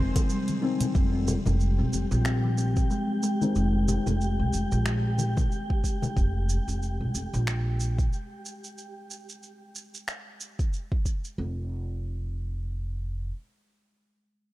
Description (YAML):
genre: organic downtempo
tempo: 92 BPM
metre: 4/4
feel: swing 57% on 16ths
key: F minor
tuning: A4 = 441 Hz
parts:
  - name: felt-muted upright piano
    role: accompaniment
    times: 0.0-3.9 s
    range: Eb3 to C4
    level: -33 LUFS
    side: left 4 dB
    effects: sidechain pumping, low-pass filter, tape echo
  - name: rich studio string section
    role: sustained chords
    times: 0.0-0.9 s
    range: C3 to Ab4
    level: -46 LUFS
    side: left 1 dB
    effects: sidechain pumping
  - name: buzzing kalimba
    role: arpeggios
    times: 0.0-3.5 s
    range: C3 to C4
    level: -31 LUFS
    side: left 2 dB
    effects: low-pass filter, tape echo
  - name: upright bass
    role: bass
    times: 0.0-13.3 s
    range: F1 to C2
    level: -27 LUFS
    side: equal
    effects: sidechain pumping
  - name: deep house drum kit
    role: drums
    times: 0.2-11.4 s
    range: finger snaps, hi-hat, shaker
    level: -36 LUFS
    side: right 1 dB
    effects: none
  - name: electronic kick drum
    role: drums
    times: 0.2-11.2 s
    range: none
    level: -26 LUFS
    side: equal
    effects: none
  - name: congas and bongos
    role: percussion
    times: 0.2-6.1 s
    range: none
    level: -33 LUFS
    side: left 2 dB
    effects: none
  - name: wind-like tuned noise texture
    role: texture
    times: 1.4-8.8 s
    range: G4 to G5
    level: -38 LUFS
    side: equal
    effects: built-in reverb
room: light reverb, small room ambience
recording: dark, warm production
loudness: -25 LUFS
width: side -16 dB against mid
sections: 0.9-11.4 A section; 11.4-14.0 B section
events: break 0.3-0.9; filter sweep on kalimba 0.9-3.6; filter sweep on felt piano 0.9-3.6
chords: 0.0 Fm; 0.9 Fmadd9; 6.2 Fsus24; 11.4 N.C.